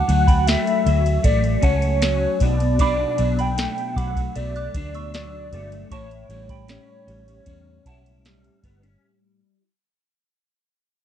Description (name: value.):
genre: indie pop, bedroom pop.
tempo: 77 BPM.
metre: 4/4.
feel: straight.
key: unclear.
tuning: A4 = 440 Hz.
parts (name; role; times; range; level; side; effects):
warbly nostalgic lead; melody; 0.0-8.6 s; C#5 to G5; -25 LUFS; left 1 dB; tremolo, wide subtle chorus, slapback echo.
electric guitar through a small old amp; accompaniment; 0.0-9.6 s; A2 to E4; -26 LUFS; left 2 dB; ensemble chorus, warbly pitch drift.
vintage muted fingered electric bass; bass; 0.1-8.9 s; G1 to E2; -23 LUFS; equal; none.
soft vintage rhythm box; drums; 0.1-9.0 s; kick drum, ride cymbal, snare drum; -21 LUFS; equal; none.
soft synth bell; second line; 0.3-8.1 s; F#5 to F#6; -32 LUFS; right 5 dB; phaser, analog chorus, slapback echo.
room: little or no reverb.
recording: dry, close 1970s-style studio recording.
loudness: -18 LUFS.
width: side -10 dB against mid.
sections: 0.0-9.0 A section.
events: fade-out 0.0-9.0.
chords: 0.0 Dmaj7; 2.4 Bm7; 5.9 A7.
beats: 0.47 1.25 2.02 | 2.80 3.58 4.36 5.13 | 5.91 6.69 7.47 8.25.